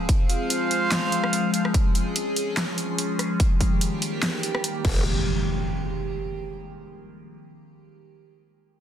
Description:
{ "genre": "heavy wobble dubstep", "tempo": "145 BPM", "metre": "4/4", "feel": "swing 55% on 16ths, half-time", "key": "F minor", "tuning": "A4 = 439 Hz", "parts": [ { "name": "evolving wavetable pad", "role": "sustained chords", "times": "0.0-5.0 s", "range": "Eb3 to Ab4", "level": "-28 LUFS", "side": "left 1 dB", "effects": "phaser, built-in reverb, sidechain pumping" }, { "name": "sub drop and impact", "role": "sound effects", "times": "0.0-0.1, 4.8-6.5 s", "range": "none", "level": "-30 LUFS", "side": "equal", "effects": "none" }, { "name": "big-room dance drum kit", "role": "drums", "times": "0.1-4.9 s", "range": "crash cymbal, handclaps, hi-hat, rim click, snare drum", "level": "-28 LUFS", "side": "equal", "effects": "overdrive, studio reverb" }, { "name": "electronic kick drum", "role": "drums", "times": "0.1-4.9 s", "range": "none", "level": "-21 LUFS", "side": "equal", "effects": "overdrive, studio reverb" }, { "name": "mellow brass ensemble", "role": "stabs", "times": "0.3-1.7 s", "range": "F4 to F5", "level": "-26 LUFS", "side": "right 3 dB", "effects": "digital delay" }, { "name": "growl bass", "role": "bass", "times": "4.8-5.0 s", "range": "F1", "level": "-28 LUFS", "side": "equal", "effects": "chorus, overdrive" } ], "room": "light reverb, digital ambience", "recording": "dense, heavily limited modern master", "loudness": "-22 LUFS", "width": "side -10 dB against mid", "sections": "0.0-5.1 A section; 5.1-6.7 B section", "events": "none", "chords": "0.0 Fm; 1.7 Db; 3.4 Eb; 4.8 Fm; 5.1 N.C." }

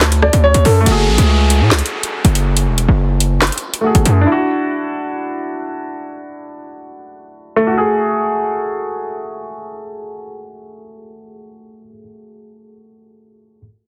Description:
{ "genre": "hip hop, drill", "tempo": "141 BPM", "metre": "4/4", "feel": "half-time", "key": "F# minor", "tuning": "A4 = 443 Hz", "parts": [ { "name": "clear concert grand piano", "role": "accompaniment", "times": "0.0-13.6 s", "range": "A3 to G#4", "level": "-21 LUFS", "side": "equal", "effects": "low-pass filter" }, { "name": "distorted 808-style bass", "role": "bass", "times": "0.0-4.3 s", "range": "E1 to A2", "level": "-15 LUFS", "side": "equal", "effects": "distortion" }, { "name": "drill drum kit", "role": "drums", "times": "0.0-4.2 s", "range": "handclaps, hi-hat, rim click, snare drum", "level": "-19 LUFS", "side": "equal", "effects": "none" }, { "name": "clear upright piano", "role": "melody", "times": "0.2-0.8 s", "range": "A4 to D5", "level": "-17 LUFS", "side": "equal", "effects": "slapback echo" }, { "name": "downlifter", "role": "sound effects", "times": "0.9-4.3 s", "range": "none", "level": "-26 LUFS", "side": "equal", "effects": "none" } ], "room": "light reverb", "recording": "heavily compressed radio sound, multiband compression", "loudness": "-15 LUFS", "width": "mono", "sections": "0.9-7.7 A section; 7.7-11.1 B section", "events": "none", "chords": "0.0 Dadd9; 0.9 F#madd9; 4.3 Dadd9; 7.7 F#madd9" }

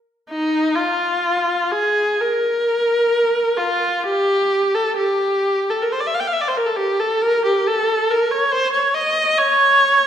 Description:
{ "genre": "classical, free, expressive piece for unaccompanied viola", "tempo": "51-71 BPM", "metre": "4/4", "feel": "rubato", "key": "unclear", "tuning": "A4 = 440 Hz", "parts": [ { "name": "clear viola", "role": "solo", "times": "0.3-10.1 s", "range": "Eb4 to G5", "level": "-16 LUFS", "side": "equal", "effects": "none" } ], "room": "wet recital hall reverb, RT60 1.5 s", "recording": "none", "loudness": "-16 LUFS", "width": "side -9 dB against mid", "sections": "0.3-10.1 A section", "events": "none", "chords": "none" }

